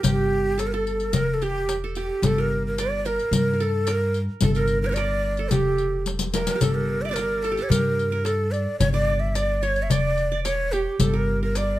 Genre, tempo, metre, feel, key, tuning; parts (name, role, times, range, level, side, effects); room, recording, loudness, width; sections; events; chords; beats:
Arabic maqam ensemble; 110 BPM; 4/4; straight; G maqam nikriz; A4 = 441 Hz
breathy ney; melody; 0.0-11.8 s; G4 to E5; -25 LUFS; right 1 dB
qanun; second line; 0.0-11.8 s; G4 to D5; -31 LUFS; right 6 dB
upright bass; bass; 0.0-11.8 s; E1 to G2; -26 LUFS; equal
darbuka; percussion; 0.0-11.7 s; -26 LUFS; left 2 dB
riq; percussion; 0.0-11.7 s; -29 LUFS; left 4 dB
light reverb; -21 LUFS; side -14 dB against mid
0.0-11.8 A section
drum fill 6.1-6.6
| 0.04 0.59 1.14 1.68 | 2.23 2.78 3.32 3.87 | 4.42 4.96 5.51 6.06 | 6.61 7.15 7.70 8.25 | 8.80 9.35 9.89 10.44 | 10.99 11.54